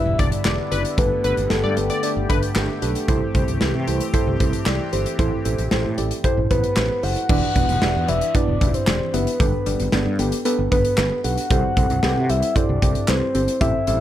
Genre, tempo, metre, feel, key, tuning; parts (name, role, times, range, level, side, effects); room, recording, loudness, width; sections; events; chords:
synth-pop; 114 BPM; 4/4; straight; A4 = 440 Hz
soft octave-layered synth lead; melody; 0.0-2.3, 6.5-14.0 s; A4 to F#5; -24 LUFS; left 1 dB; chorus, analog delay
muted felt-like synth keys; accompaniment; 0.0-14.0 s; B3 to E5; -25 LUFS; right 3 dB; chorus
sweeping resonant pad; sustained chords; 0.0-7.3 s; D3 to G4; -29 LUFS; left 3 dB; chorus
fretless electric bass; bass; 0.1-14.0 s; E1 to C3; -24 LUFS; equal; ensemble chorus
funky polysynth comp; second line; 0.2-2.4 s; B4 to D5; -29 LUFS; left 4 dB; chorus, analog delay
modern studio drum kit; drums; 0.2-14.0 s; crash cymbal, handclaps, hi-hat, kick drum, snare drum; -22 LUFS; equal
warbly dusty pluck; arpeggios; 7.3-14.0 s; E3 to G4; -30 LUFS; left 2 dB; chorus, analog delay
small room ambience; -18 LUFS; side -12 dB against mid
0.0-7.3 A section; 7.3-14.0 B section
0.0 Em7; 1.0 Gadd9; 3.1 C6; 5.2 Am7; 7.3 Em7; 9.4 Gadd9; 11.5 C6